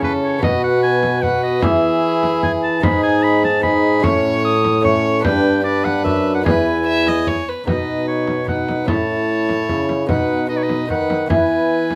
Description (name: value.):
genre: classical, renaissance-style consort dance.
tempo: 149 BPM.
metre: 3/4.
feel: straight.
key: unclear.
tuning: A4 = 441 Hz.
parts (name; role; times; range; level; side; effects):
clear oboe; melody; 0.0-12.0 s; B4 to D#6; -24 LUFS; equal; none.
warm violin; second line; 0.0-12.0 s; G#4 to E5; -27 LUFS; equal; none.
lute; accompaniment; 0.0-12.0 s; E2 to E5; -28 LUFS; equal; none.
warm trombone; accompaniment; 0.0-12.0 s; C#4 to F#4; -23 LUFS; equal; none.
dark bassoon; bass; 0.0-12.0 s; E2 to E3; -23 LUFS; equal; none.
frame drum; percussion; 0.0-12.0 s; none; -25 LUFS; equal; none.
room: light reverb.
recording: close, detailed microphones.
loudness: -17 LUFS.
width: mono.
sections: 0.0-7.7 A section; 7.7-12.0 B section.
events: none.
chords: 0.4 B5; 1.6 E; 2.8 G#m; 4.0 A; 5.2 G; 6.5 E; 7.7 B; 8.9 A; 10.1 B; 11.3 E.